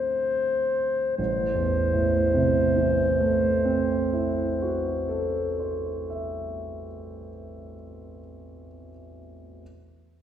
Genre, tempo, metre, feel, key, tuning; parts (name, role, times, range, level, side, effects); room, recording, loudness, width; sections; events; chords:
classical, impressionist duo for clarinet and grand piano; 38 BPM; 4/4; rubato; A minor; A4 = 441 Hz
mellow clarinet; melody; 0.0-5.7 s; C5; -25 LUFS; left 1 dB
warm concert grand piano; accompaniment; 0.0-9.6 s; A1 to E5; -27 LUFS; right 2 dB
wet scoring stage reverb, RT60 1.8 s; heard from further back in the room; -22 LUFS; side -10 dB against mid
0.0-1.2 A section; 1.2-7.4 B section
0.0 D7sus2; 1.2 Am6